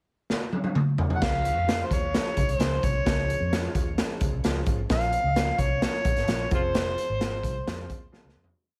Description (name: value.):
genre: uptempo 1960s-style soul.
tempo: 130 BPM.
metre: 4/4.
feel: straight.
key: Db major.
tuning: A4 = 441 Hz.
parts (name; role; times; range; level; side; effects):
raw garage drum kit; drums; 0.3-8.5 s; crash cymbal, hi-hat, kick drum, snare drum, toms; -29 LUFS; equal; none.
overdriven harmonica; melody; 1.2-8.1 s; F4 to Gb5; -31 LUFS; equal; tape echo.
clear upright piano; accompaniment; 1.2-8.5 s; F3 to Ab4; -39 LUFS; equal; none.
vintage muted fingered electric bass; bass; 1.2-8.5 s; F1 to F2; -32 LUFS; equal; none.
room: light reverb.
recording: heavily compressed radio sound.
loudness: -26 LUFS.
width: mono.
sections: 0.0-1.2 pickup bar; 1.2-8.6 verse.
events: drum fill 0.3-1.2, 8.1-8.6; fade-out 6.7-8.6.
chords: 0.0 N.C.; 1.2 Db; 4.9 Bbm; 6.5 Fm.